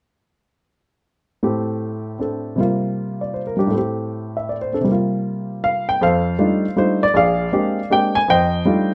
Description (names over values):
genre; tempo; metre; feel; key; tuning
jazz; 158 BPM; 3/4; swing 65% on 8ths; F major; A4 = 437 Hz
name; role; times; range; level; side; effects
warm baby grand piano; solo; 1.4-8.9 s; Bb1 to Ab5; -20 LUFS; equal; none
room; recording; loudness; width
light reverb; none; -20 LUFS; mono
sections
1.4-6.0 A section; 6.0-8.9 B section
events
none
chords
1.4 Am7; 2.6 C7sus4; 3.7 Am7; 4.9 C7sus4; 6.0 F13; 7.1 Bb13; 8.3 F13